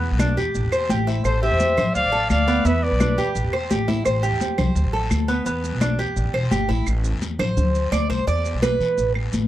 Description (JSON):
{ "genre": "latin, Cuban son and guajira", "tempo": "171 BPM", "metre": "4/4", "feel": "straight", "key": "A minor", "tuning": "A4 = 439 Hz", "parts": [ { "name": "Cuban tres", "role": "arpeggios", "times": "0.0-9.1 s", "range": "B3 to D5", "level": "-24 LUFS", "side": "right 2 dB", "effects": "tape echo" }, { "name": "upright bass", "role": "bass", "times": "0.0-9.5 s", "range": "E1 to E3", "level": "-23 LUFS", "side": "equal", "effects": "none" }, { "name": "congas", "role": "percussion", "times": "0.0-9.5 s", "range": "none", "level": "-26 LUFS", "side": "left 3 dB", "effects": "none" }, { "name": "claves", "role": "percussion", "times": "0.2-9.3 s", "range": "none", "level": "-34 LUFS", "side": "right 5 dB", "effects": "none" }, { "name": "guiro", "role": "percussion", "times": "0.2-9.5 s", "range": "none", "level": "-38 LUFS", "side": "left 6 dB", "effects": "none" }, { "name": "maracas", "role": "percussion", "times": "0.2-9.5 s", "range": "none", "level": "-38 LUFS", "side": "right 7 dB", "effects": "none" }, { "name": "breathy trumpet", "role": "melody", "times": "1.2-3.4 s", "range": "C5 to F5", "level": "-22 LUFS", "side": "equal", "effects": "none" }, { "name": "warm studio violin section", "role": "second line", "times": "1.2-3.4 s", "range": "A4 to D5", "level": "-25 LUFS", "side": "left 1 dB", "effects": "none" } ], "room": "little or no reverb", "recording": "dry, close 1970s-style studio recording", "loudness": "-18 LUFS", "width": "side -13 dB against mid", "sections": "0.0-6.9 A section; 6.9-9.5 B section", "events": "Cuban tres solo 6.9-9.5", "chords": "0.0 E5; 0.5 Am7; 2.0 Dm7; 2.7 E5; 3.4 Am7; 4.8 D5; 5.5 E5; 6.2 Am7; 6.9 A5; 7.6 Csus2; 8.3 E5" }